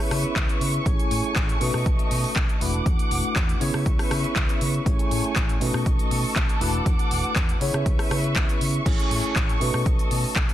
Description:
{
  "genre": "filtered disco house",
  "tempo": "120 BPM",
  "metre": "4/4",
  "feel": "straight",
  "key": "A major",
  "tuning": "A4 = 440 Hz",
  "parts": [
    { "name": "tine electric piano", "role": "accompaniment", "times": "0.0-10.5 s", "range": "A3 to C#5", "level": "-29 LUFS", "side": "left 1 dB", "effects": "medium stereo tremolo, phaser, sidechain pumping" },
    { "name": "muted studio violin section", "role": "sustained chords", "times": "0.0-10.5 s", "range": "A3 to D6", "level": "-30 LUFS", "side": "equal", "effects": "sidechain pumping" },
    { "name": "fingered electric bass", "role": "bass", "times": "0.1-10.4 s", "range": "E1 to C#3", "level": "-27 LUFS", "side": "equal", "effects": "sidechain pumping" },
    { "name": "house drum kit", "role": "drums", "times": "0.1-10.5 s", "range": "crash cymbal, handclaps, hi-hat, rim click", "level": "-29 LUFS", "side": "equal", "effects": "sidechain pumping on hats, sidechain pumping on cymbals" },
    { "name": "electronic kick drum", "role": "drums", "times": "0.4-10.5 s", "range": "none", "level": "-24 LUFS", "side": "equal", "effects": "overdrive" }
  ],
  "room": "digital ambience",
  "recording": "dense, heavily limited modern master",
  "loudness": "-20 LUFS",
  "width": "side -12 dB against mid",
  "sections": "0.0-10.5 A section",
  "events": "none",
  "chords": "0.0 C#m7; 0.9 Amaj7; 1.6 B9; 2.6 E9sus4; 3.6 C#m7; 4.9 Amaj7; 5.6 B9; 6.6 E9sus4; 7.6 C#m7; 8.9 Amaj7; 9.6 B9",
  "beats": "0.36 | 0.86 1.36 1.86 2.36 | 2.86 3.36 3.86 4.36 | 4.86 5.36 5.86 6.36 | 6.86 7.36 7.86 8.36 | 8.86 9.36 9.86 10.36"
}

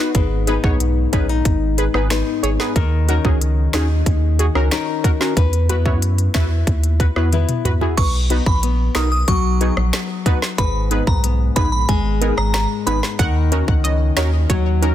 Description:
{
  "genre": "dancehall",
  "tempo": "92 BPM",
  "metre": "4/4",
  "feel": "straight",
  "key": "G# minor",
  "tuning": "A4 = 441 Hz",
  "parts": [
    { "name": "synth brass stab", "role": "accompaniment", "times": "0.0-14.9 s", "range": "B3 to C#5", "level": "-24 LUFS", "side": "right 1 dB", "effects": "chorus" },
    { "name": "nylon-string guitar", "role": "arpeggios", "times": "0.0-14.9 s", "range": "G#2 to B4", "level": "-24 LUFS", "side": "left 9 dB", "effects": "none" },
    { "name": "saturated sub bass", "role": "bass", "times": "0.1-14.9 s", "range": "G#1 to F#2", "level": "-18 LUFS", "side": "right 1 dB", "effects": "none" },
    { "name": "island pop drum kit", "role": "drums", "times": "0.1-14.9 s", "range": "crash cymbal, finger snaps, hi-hat, kick drum, rim click, snare drum, toms", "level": "-20 LUFS", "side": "equal", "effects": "soft clipping on snare" },
    { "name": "glassy synth bell", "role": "melody", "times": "8.0-13.0 s", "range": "G#5 to D#6", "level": "-24 LUFS", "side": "right 1 dB", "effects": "chorus, ping-pong delay" },
    { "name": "analog pluck", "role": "second line", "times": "13.2-14.9 s", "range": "C#5 to F#5", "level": "-27 LUFS", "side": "right 3 dB", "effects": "chorus, ping-pong delay" }
  ],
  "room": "little or no reverb",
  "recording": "dense, heavily limited modern master",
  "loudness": "-15 LUFS",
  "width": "side -12 dB against mid",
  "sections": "0.0-8.0 A section; 8.0-14.9 B section",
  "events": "drum fill 7.3-8.0",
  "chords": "0.1 G#m; 2.8 D#m7; 5.4 Esus2; 8.0 B; 10.6 G#m; 13.2 D#m7",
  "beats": "| 0.15 0.80 1.45 2.11 | 2.76 3.41 4.06 4.71 | 5.37 6.02 6.67 7.32 | 7.98 8.63 9.28 9.93 | 10.58 11.24 11.89 12.54 | 13.19 13.85 14.50"
}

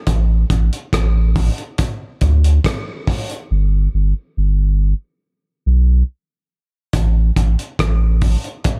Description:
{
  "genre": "dub reggae",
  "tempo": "70 BPM",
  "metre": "4/4",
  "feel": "straight",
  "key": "unclear",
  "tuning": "A4 = 441 Hz",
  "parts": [
    { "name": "warm sub bass", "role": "bass", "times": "0.1-8.4 s", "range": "G1 to D2", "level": "-16 LUFS", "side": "equal", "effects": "none" },
    { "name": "cloth-damped thuddy drum kit", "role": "drums", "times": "0.1-8.8 s", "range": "hi-hat, kick drum, rim click", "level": "-22 LUFS", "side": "equal", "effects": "none" }
  ],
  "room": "little or no reverb",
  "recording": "none",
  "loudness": "-17 LUFS",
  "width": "mono",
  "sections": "0.0-8.8 A section",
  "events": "part muted 3.5-6.9; break 6.1-6.9",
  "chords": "none",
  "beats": "| 0.07 0.93 1.79 2.65 | 3.50 4.36 5.22 6.08 | 6.93 7.79 8.65"
}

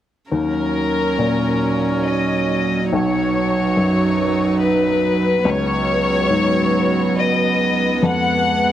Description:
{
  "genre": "neoclassical piano and strings",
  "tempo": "70 BPM",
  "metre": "3/4",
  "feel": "rubato",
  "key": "Eb minor",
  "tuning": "A4 = 440 Hz",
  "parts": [
    { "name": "warm chamber violin section", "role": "melody", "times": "0.3-8.7 s", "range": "Bb4 to Gb5", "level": "-20 LUFS", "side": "left 3 dB", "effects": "none" },
    { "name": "warm cello", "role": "second line", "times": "0.3-8.7 s", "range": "Gb3 to Ab3", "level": "-23 LUFS", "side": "right 5 dB", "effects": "none" },
    { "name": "warm upright piano", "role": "accompaniment", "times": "0.3-8.7 s", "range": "B1 to Bb2", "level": "-22 LUFS", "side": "left 3 dB", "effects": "none" },
    { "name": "warm viola", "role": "accompaniment", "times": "0.3-8.7 s", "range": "Cb4 to D#4", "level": "-23 LUFS", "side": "right 3 dB", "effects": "none" },
    { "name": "warbly tape-like pad", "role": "sustained chords", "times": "1.1-8.7 s", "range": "Cb4 to Db5", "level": "-28 LUFS", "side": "equal", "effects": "chorus, built-in reverb" }
  ],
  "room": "moderate spring reverb, RT60 1.1 s, small room reverb",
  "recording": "cassette tape",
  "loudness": "-16 LUFS",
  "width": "side -11 dB against mid",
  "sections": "0.3-8.7 A section",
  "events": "none",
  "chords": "0.3 Ebm7; 2.9 B; 5.5 Db7sus4; 8.0 Fdim",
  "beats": "| 0.32 1.19 2.07 | 2.92 3.77 4.61 | 5.46 6.31 7.16 | 8.03"
}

